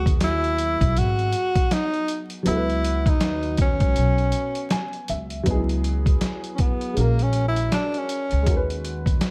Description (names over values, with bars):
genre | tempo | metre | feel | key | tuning
hip hop, jazz-hop | 80 BPM | 4/4 | swing 60% on 16ths | C# minor | A4 = 440 Hz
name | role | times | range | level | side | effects
mellow tenor saxophone | melody | 0.0-8.7 s | A#3 to F#4 | -27 LUFS | equal | slapback echo
dark upright piano | accompaniment | 0.0-9.3 s | F#3 to G#5 | -32 LUFS | equal | none
upright bass | bass | 0.0-9.2 s | G#1 to D#2 | -26 LUFS | equal | none
trip hop sampler-style drum kit | drums | 0.1-9.3 s | hi-hat, kick drum, snare drum | -26 LUFS | equal | none
room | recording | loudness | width
small room ambience | vinyl crackle | -22 LUFS | mono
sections
0.0-5.5 A section; 5.5-9.3 B section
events
upright piano fill 4.3-5.5; tenor saxophone solo 5.5-9.3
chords
0.0 C#m11; 5.5 C#m7; 7.0 A#m7b13; 8.5 B69/D#